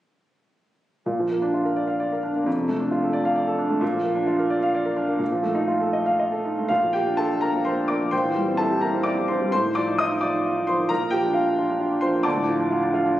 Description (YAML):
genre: classical, virtuoso piano study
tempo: 76-91 BPM (dotted quarters)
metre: 6/8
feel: rubato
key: Bb major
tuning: A4 = 439 Hz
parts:
  - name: clear baby grand piano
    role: solo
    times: 1.1-13.2 s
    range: D2 to Eb6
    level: -20 LUFS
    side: equal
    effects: none
room: moderate recital hall reverb, RT60 1.5 s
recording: recorded on a phone in the room, studio reverb, compression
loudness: -20 LUFS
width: side -13 dB against mid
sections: 1.1-6.7 A section; 6.7-13.2 B section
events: none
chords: 1.1 Bb; 2.5 F6; 3.8 Bb; 5.2 F7/Bb; 6.7 Bb; 8.1 C7/Bb; 9.5 F7/A; 10.9 Bb; 12.2 Dm